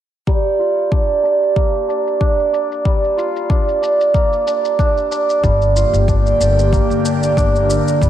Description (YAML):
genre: organic downtempo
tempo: 93 BPM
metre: 4/4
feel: swing 55% on 16ths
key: G minor pentatonic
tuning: A4 = 439 Hz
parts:
  - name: santur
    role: arpeggios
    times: 0.3-8.1 s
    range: G3 to F4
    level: -16 LUFS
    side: right 3 dB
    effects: low-pass filter, digital delay, slapback echo
  - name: electronic kick drum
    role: drums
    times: 0.3-8.1 s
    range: none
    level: -17 LUFS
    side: left 1 dB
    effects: none
  - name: shaker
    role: drums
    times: 0.3-8.1 s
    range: none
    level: -31 LUFS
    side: left 3 dB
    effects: low-pass filter on perc
  - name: quartz singing bowl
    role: texture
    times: 0.3-8.1 s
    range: G4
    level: -28 LUFS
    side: left 6 dB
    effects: none
  - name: airy breathy pad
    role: sustained chords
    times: 5.4-8.1 s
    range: D3 to G4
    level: -19 LUFS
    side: left 3 dB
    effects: chorus, phaser, sidechain pumping
  - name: upright bass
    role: bass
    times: 5.4-8.1 s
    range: G1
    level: -17 LUFS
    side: left 1 dB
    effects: tube saturation
room: wet concert hall reverb, RT60 2.1 s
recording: big arena sound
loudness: -13 LUFS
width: side -11 dB against mid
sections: 0.3-8.1 A section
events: filter sweep on drum 0.3-8.1; filter sweep on santur 0.3-8.1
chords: 0.3 Gm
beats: | 0.27 0.92 1.56 2.21 | 2.85 3.50 4.14 4.79 | 5.43 6.08 6.72 7.37 | 8.01